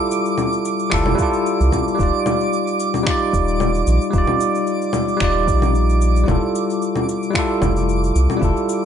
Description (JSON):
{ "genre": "sunset chillout", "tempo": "112 BPM", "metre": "4/4", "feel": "swing 54% on 16ths", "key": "Eb lydian", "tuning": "A4 = 440 Hz", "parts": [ { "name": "bell-like tine electric piano", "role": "accompaniment", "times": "0.0-8.8 s", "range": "G3 to D5", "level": "-19 LUFS", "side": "equal", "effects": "auto-pan, tape echo" }, { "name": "twinkling granular texture", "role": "texture", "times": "0.0-8.8 s", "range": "D6", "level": "-27 LUFS", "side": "right 4 dB", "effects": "built-in reverb" }, { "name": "electronic cabasa, congas and finger snaps", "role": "drums", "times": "0.1-8.8 s", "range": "none", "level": "-24 LUFS", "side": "left 2 dB", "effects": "overdrive" }, { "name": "round analog bass", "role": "bass", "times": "0.9-8.5 s", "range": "Eb1 to C2", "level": "-18 LUFS", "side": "equal", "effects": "none" }, { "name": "electronic kick drum", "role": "drums", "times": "0.9-8.5 s", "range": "none", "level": "-23 LUFS", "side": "equal", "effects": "none" } ], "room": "moderate plate reverb, RT60 1.3 s", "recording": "dreamy mix soaked in reverb, nothing above 10.6 kHz", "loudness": "-16 LUFS", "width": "side -8 dB against mid", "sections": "0.0-8.8 A section", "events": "none", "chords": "0.0 Fmaj9; 2.0 Ebmaj9; 6.3 Fmaj9" }